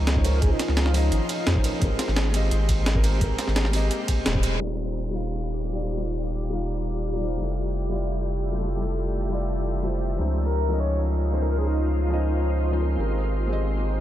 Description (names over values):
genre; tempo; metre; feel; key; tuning
liquid drum and bass; 172 BPM; 4/4; straight; Eb major; A4 = 441 Hz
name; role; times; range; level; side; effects
felt-muted upright piano; accompaniment; 0.0-14.0 s; F3 to F5; -30 LUFS; left 1 dB; ping-pong delay
shimmering ambient pad; sustained chords; 0.0-14.0 s; A3 to E5; -32 LUFS; left 1 dB; chorus, built-in reverb, sidechain pumping
saturated sub bass; bass; 0.0-14.0 s; Eb1 to F2; -24 LUFS; equal; none
breakbeat sampler-style drum kit; drums; 0.1-4.7 s; crash cymbal, hi-hat, ride cymbal, snare drum; -29 LUFS; right 1 dB; none
electronic kick drum; drums; 0.2-4.4 s; none; -24 LUFS; equal; none
breathy flute-like synth lead; melody; 0.3-1.0, 10.4-12.2 s; Eb4 to Db5; -33 LUFS; equal; tremolo, wide subtle chorus, analog delay
room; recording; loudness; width
light reverb, digital ambience; low-pass filter; -22 LUFS; side -12 dB against mid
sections
0.0-4.6 A section; 4.6-14.0 B section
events
drop 0.0-4.6; band accent 4.3; filter sweep on ambient pad 4.6-14.0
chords
0.0 Dbmaj9; 1.8 Abmaj9; 4.6 Ebmaj9; 7.4 Fmaj9; 10.2 Dbmaj9; 13.0 Abmaj9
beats
0.07 | 0.42 0.77 1.12 1.47 | 1.82 2.17 2.51 2.86 | 3.21 3.56 3.91 4.26 | 4.61 4.96 5.30 5.65 | 6.00 6.35 6.70 7.05 | 7.40 7.75 8.10 8.44 | 8.79 9.14 9.49 9.84 | 10.19 10.54 10.89 11.23 | 11.58 11.93 12.28 12.63 | 12.98 13.33 13.68